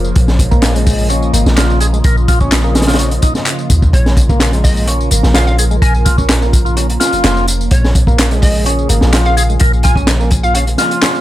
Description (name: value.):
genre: breakbeat, breaks.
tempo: 127 BPM.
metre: 4/4.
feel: straight.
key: Bb minor.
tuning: A4 = 442 Hz.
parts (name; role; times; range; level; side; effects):
phased analog pad; sustained chords; 0.0-11.2 s; Db3 to Eb5; -21 LUFS; right 1 dB; phaser, chorus, sidechain pumping.
warm 808-style bass; bass; 0.0-10.8 s; F1 to Eb2; -13 LUFS; equal; tube saturation.
electronic tambourine and handclaps; drums; 0.0-11.2 s; none; -21 LUFS; left 1 dB; none.
crunchy breakbeat drum kit; drums; 0.2-11.1 s; hi-hat, kick drum, snare drum; -14 LUFS; equal; none.
percussive tonewheel organ; riff; 0.5-11.2 s; Ab3 to Bb4; -19 LUFS; equal; slow rotary speaker, tube saturation.
hollow square pluck; melody; 3.9-10.6 s; Db5 to Ab5; -22 LUFS; equal; chorus, old record sound, ping-pong delay.
room: small room ambience.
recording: none.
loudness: -9 LUFS.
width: side -14 dB against mid.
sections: 0.0-11.2 A section.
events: none.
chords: 0.0 Bbm.